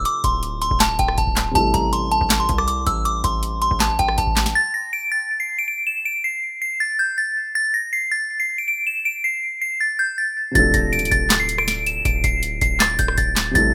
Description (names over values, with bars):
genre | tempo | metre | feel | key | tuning
hip hop, trap | 160 BPM | 4/4 | half-time | D minor | A4 = 440 Hz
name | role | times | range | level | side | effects
delicate synth tine bell | melody | 0.0-13.7 s | G5 to E7 | -22 LUFS | equal | chorus, tape echo
dark concert grand piano | accompaniment | 0.0-4.6, 10.5-13.7 s | C3 to A4 | -30 LUFS | equal | none
distorted 808-style bass | bass | 0.0-4.5, 10.6-13.7 s | D1 to C2 | -29 LUFS | equal | distortion
booming analog drum machine | drums | 0.1-4.5, 10.6-13.7 s | handclaps, hi-hat, kick drum, rim click, snare drum | -24 LUFS | equal | none
room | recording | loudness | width
little or no reverb | rough home demo mix | -20 LUFS | mono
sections
0.0-4.6 A section; 4.6-13.7 B section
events
none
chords
0.0 Dm7; 1.6 Am7; 4.6 N.C.; 10.6 Dm7